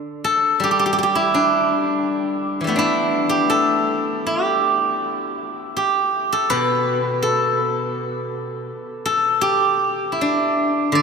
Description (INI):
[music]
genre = chinese traditional, Chinese solo plucked strings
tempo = 82 BPM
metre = 2/4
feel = rubato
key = D zhi mode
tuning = A4 = 440 Hz
[part]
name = steel-string zither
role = solo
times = 0.0-11.0 s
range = B2 to D5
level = -17 LUFS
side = equal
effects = none
[sound]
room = wet cathedral reverb, RT60 6.4 s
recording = in a vast, echoing space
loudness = -17 LUFS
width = side -5 dB against mid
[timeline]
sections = 0.0-10.9 A section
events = none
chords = none